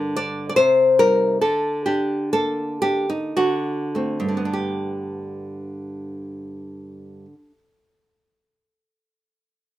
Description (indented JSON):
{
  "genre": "romantic piece for solo classical guitar",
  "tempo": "49-74 BPM",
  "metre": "3/4",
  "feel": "rubato",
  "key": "unclear",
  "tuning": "A4 = 440 Hz",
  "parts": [
    { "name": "nylon-string guitar", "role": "solo", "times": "0.0-7.6 s", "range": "G2 to D5", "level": "-20 LUFS", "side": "left 1 dB", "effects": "none" }
  ],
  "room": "light reverb",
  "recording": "none",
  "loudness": "-18 LUFS",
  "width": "side -14 dB against mid",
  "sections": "0.0-4.5 A section; 4.5-7.9 B section",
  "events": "slowing down 0.0-4.5",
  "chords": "0.0 Gm; 0.6 Cm; 1.4 Ebmaj7#11/D; 3.4 D7; 4.5 G"
}